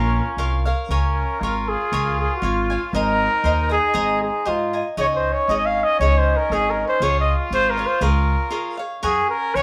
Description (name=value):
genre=mexican folk, mariachi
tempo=118 BPM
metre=2/4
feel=rubato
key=Db major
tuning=A4 = 439 Hz
part: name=warm trumpet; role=melody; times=0.0-9.6 s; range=F4 to F5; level=-23 LUFS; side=equal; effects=none
part: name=clear trumpet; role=second line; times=0.0-9.6 s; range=C#4 to F4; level=-32 LUFS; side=equal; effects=none
part: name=cavaquinho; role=accompaniment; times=0.0-9.6 s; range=Eb4 to Bb5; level=-27 LUFS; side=equal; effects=none
part: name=upright bass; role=bass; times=0.0-9.6 s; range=Ab1 to Ab2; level=-25 LUFS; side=equal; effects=none
room=wet studio reverb, RT60 0.6 s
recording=band playing live in one room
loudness=-20 LUFS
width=mono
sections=0.9-9.0 A section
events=break 8.5-9.0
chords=0.0 Bbm; 0.9 Db6; 2.9 Abadd9; 5.0 Dbsus2; 7.0 Db; 9.0 F#add9